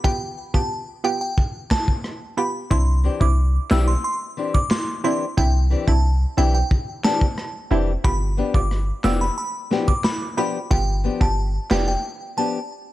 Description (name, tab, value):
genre	dancehall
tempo	90 BPM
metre	4/4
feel	straight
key	C major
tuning	A4 = 439 Hz
part	glassy synth bell	melody	0.0-12.5 s	G5 to E6	-27 LUFS	equal	chorus, digital delay
part	hollow square pluck	accompaniment	0.0-11.9 s	B3 to G4	-28 LUFS	right 4 dB	chorus
part	crunchy breakbeat drum kit	drums	0.0-11.9 s	handclaps, kick drum, rim click, snare drum	-22 LUFS	equal	vintage 12-bit sampler grit
part	warm 808-style bass	bass	2.7-12.0 s	F1 to C2	-19 LUFS	equal	none
part	nylon-string guitar	arpeggios	3.0-12.6 s	E3 to G4	-26 LUFS	left 6 dB	none
room	small room ambience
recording	dark, warm production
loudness	-19 LUFS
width	side -16 dB against mid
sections	0.0-12.9 A section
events	break 0.0-2.7, 12.0-12.9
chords	0.0 G7; 2.7 Cadd9; 8.0 G7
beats	| 0.04 0.71 1.38 2.04 | 2.71 3.38 4.04 4.71 | 5.38 6.04 6.71 7.38 | 8.04 8.71 9.38 10.04 | 10.71 11.38 12.04